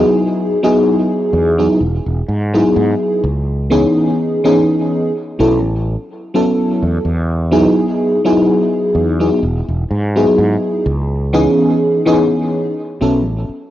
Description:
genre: vaporwave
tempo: 63 BPM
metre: 4/4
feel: swing 54% on 16ths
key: E major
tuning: A4 = 440 Hz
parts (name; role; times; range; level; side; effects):
- FM electric piano with soft pad layer; accompaniment; 0.0-13.2 s; E3 to A4; -13 LUFS; equal; tremolo, wide subtle chorus, tape echo
- fretless electric bass; bass; 0.0-13.5 s; E1 to G#2; -17 LUFS; equal; none
room: moderate plate reverb, RT60 2.9 s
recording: worn, warbling old tape, cassette tape, warbly pitch drift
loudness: -12 LUFS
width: side -13 dB against mid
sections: 0.0-13.7 A section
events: fade-out 12.1-13.7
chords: 0.0 Emaj9; 3.2 C#m9; 5.1 B9sus4; 7.0 Emaj9; 10.9 C#m9; 12.8 B9sus4

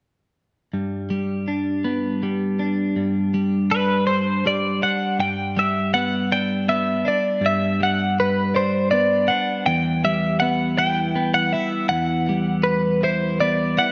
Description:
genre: rock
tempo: 54 BPM (dotted quarters)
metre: 6/8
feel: straight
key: unclear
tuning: A4 = 439 Hz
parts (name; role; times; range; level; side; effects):
- twelve-string electric guitar; arpeggios; 0.7-13.9 s; E2 to E4; -24 LUFS; equal; tape echo
- twelve-string electric guitar; melody; 3.7-13.9 s; B4 to G5; -23 LUFS; equal; tape echo
room: wet lush hall reverb, RT60 1.7 s, digital ambience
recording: none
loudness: -21 LUFS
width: mono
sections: 0.7-5.2 A section; 5.2-13.9 B section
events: none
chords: 0.7 G; 9.7 Emadd9

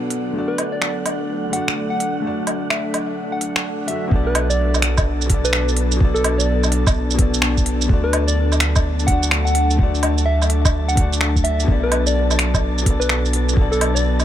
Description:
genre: future garage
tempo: 127 BPM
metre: 4/4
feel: swing 65% on 16ths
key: B minor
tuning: A4 = 440 Hz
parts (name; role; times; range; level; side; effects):
- warm upright piano; accompaniment; 0.0-14.2 s; B2 to E5; -27 LUFS; left 4 dB; vintage 12-bit sampler grit, sidechain pumping, ping-pong delay
- airy breathy pad; sustained chords; 0.0-14.2 s; F#3 to D5; -25 LUFS; equal; chorus, vintage 12-bit sampler grit, sidechain pumping
- wind-like tuned noise texture; texture; 0.0-14.2 s; F#5 to A5; -33 LUFS; equal; built-in reverb
- organic electronic drum kit; drums; 0.1-14.2 s; finger snaps, hi-hat, shaker, woodblock; -22 LUFS; right 1 dB; none
- soft struck synth lead; melody; 0.5-14.2 s; A4 to F#5; -25 LUFS; left 1 dB; chorus, cassette tape, ping-pong delay
- warm sub bass; bass; 4.1-14.2 s; B1 to D2; -20 LUFS; equal; none
- electronic kick drum; drums; 4.1-13.7 s; none; -18 LUFS; equal; none
room: light reverb, digital ambience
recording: none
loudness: -16 LUFS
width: side -11 dB against mid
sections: 0.0-4.1 A section; 4.1-14.2 B section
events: none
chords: 0.3 D; 4.1 Bm7; 7.9 D; 11.7 Bm7

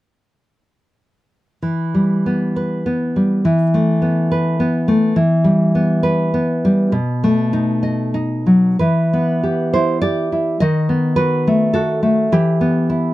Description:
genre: romantic piece for solo classical guitar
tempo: 90-106 BPM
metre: 3/4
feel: rubato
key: E minor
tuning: A4 = 440 Hz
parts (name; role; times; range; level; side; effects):
- nylon-string guitar; solo; 1.6-13.1 s; B2 to D#5; -14 LUFS; equal; none
room: little or no reverb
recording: close, detailed microphones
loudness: -14 LUFS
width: side -16 dB against mid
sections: 1.6-8.8 A section; 8.8-13.1 B section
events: none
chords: 1.6 Em; 3.4 Esus4; 5.2 Em; 6.9 B7; 8.8 Em; 10.6 B7/D#; 12.3 Em

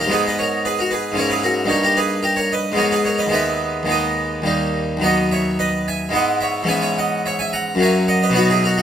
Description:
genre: classical, baroque-style suite movement for harpsichord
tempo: 110 BPM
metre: 3/4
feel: rubato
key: G# minor, B major from 5.1 s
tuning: A4 = 440 Hz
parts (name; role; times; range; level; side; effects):
- harpsichord; solo; 0.0-8.8 s; D#2 to A#5; -16 LUFS; equal; none
room: moderate large studio reverb, RT60 1.2 s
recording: close, detailed microphones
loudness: -16 LUFS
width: side -9 dB against mid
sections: 0.0-8.8 A section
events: none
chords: 0.1 G#m; 1.2 A#m7b5/G#; 1.7 D#/G; 2.8 G#m; 3.4 G#m/D#; 4.5 D#; 5.1 B/D#; 6.2 E/G#; 6.7 C#m7/G#; 7.8 F#

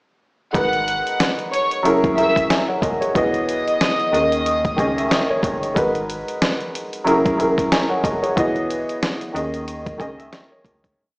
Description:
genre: hip hop, boom-bap hip-hop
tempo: 92 BPM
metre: 4/4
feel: swing 57% on 16ths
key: G# minor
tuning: A4 = 439 Hz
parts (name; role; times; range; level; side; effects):
- warm studio violin section; melody; 0.5-5.1 s; C#5 to F#6; -21 LUFS; equal; high-pass filter, low-pass filter, plate reverb, tape echo
- warm upright piano; accompaniment; 0.5-11.0 s; D#3 to G#5; -20 LUFS; equal; cassette tape, high-pass filter, low-pass filter, plate reverb
- metallic FM bass; bass; 0.5-10.9 s; E1 to D#2; -31 LUFS; equal; none
- dusty soul sampler-style drum kit; drums; 0.5-11.0 s; hi-hat, kick drum, snare drum; -22 LUFS; equal; none
room: moderate studio reverb, RT60 0.6 s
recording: played on a big sound system in a bare room, stone room reverb, small speaker sound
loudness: -17 LUFS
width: side -30 dB against mid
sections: 0.5-11.0 verse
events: upright piano fill 4.5-5.8; fade-out 8.4-11.0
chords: 0.5 G#m9; 1.8 F#9; 3.2 Emaj9; 4.1 D#7sus4; 5.8 G#m9; 7.1 F#9; 8.4 Emaj9; 9.3 D#7sus4

